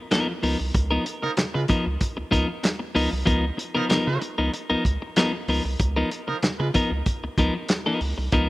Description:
funk; 95 BPM; 4/4; straight; Db mixolydian; A4 = 441 Hz
clean electric guitar; accompaniment; 0.1-8.5 s; F3 to Bb4; -24 LUFS; left 1 dB; spring reverb
warm soul drum kit; drums; 0.1-8.5 s; handclaps, hi-hat, kick drum, snare drum; -25 LUFS; equal
round analog bass; bass; 0.4-8.5 s; C2 to Db3; -26 LUFS; equal
clear horn section; second line; 1.2-6.7 s; F3 to Cb5; -30 LUFS; right 3 dB
studio ambience; rough home demo mix; -21 LUFS; side -19 dB against mid
0.0-8.5 A section
0.0 Db13

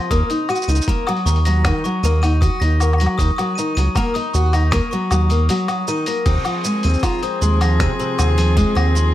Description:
folktronica; 78 BPM; 4/4; straight; Eb dorian; A4 = 441 Hz
glockenspiel with brass mallets; second line; 0.0-9.1 s; Bb5 to Eb7; -25 LUFS; left 3 dB; ping-pong delay
picked twelve-string acoustic guitar; arpeggios; 0.0-9.1 s; C3 to Gb4; -22 LUFS; left 1 dB; tape echo
round analog bass; bass; 0.1-9.1 s; Db2 to Eb2; -16 LUFS; equal
electronic kick drum; drums; 0.1-8.7 s; -21 LUFS; equal; overdrive
lo-fi sampler-style drum kit; drums; 0.1-9.1 s; crash cymbal, finger snaps, hi-hat, shaker, woodblock; -26 LUFS; left 1 dB; overdrive
warm string quartet; sustained chords; 6.3-9.1 s; F3 to Ab4; -24 LUFS; right 1 dB
studio ambience; -15 LUFS; side -13 dB against mid
0.0-9.1 A section
break 5.5-6.3
0.1 Ebm; 6.3 Fm/Eb

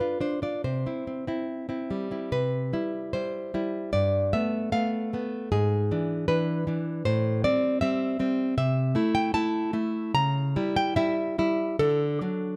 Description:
romantic piece for solo classical guitar; 68-79 BPM; 2/4; rubato; C major; A4 = 440 Hz
nylon-string guitar; solo; 0.0-12.6 s; G2 to Bb5; -27 LUFS; equal
light reverb; close, detailed microphones; -27 LUFS; mono
0.0-2.3 A section; 2.3-12.6 B section
0.0 G7 (rootless); 0.6 C; 3.9 G9; 5.5 E7/G#; 7.1 Am7; 8.6 Am/C; 10.2 C#dim; 11.8 D

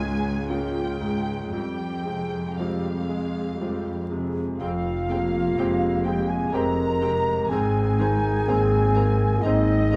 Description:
cinematic; 58-63 BPM; 3/4; rubato; F minor; A4 = 442 Hz
muted symphonic violin section; melody; 0.0-10.0 s; F5 to Bb5; -40 LUFS; equal
bright concert grand piano; accompaniment; 0.0-10.0 s; Db2 to Ab4; -31 LUFS; equal
muted symphonic viola section; accompaniment; 0.0-10.0 s; G3 to Ab4; -37 LUFS; equal
muted symphonic cello section; bass; 0.0-10.0 s; Db2 to Ab2; -31 LUFS; equal
mellow hollow silver concert flute; second line; 4.6-10.0 s; Eb5 to Bb5; -34 LUFS; equal
muted symphonic violin section; second line; 4.6-10.0 s; Eb5 to Bb5; -36 LUFS; equal
warm clarinet; second line; 4.6-10.0 s; Ab3 to Eb4; -34 LUFS; equal
dark French horn section; sustained chords; 4.6-10.0 s; Eb4 to Bb4; -28 LUFS; equal
muted symphonic double bass section; bass; 4.6-10.0 s; F1 to Ab1; -30 LUFS; equal
light reverb; close, detailed microphones, vinyl crackle; -24 LUFS; mono
0.0-4.6 A section; 4.6-10.0 A section
0.0 Db6; 1.5 Fmadd9; 7.5 Abadd9

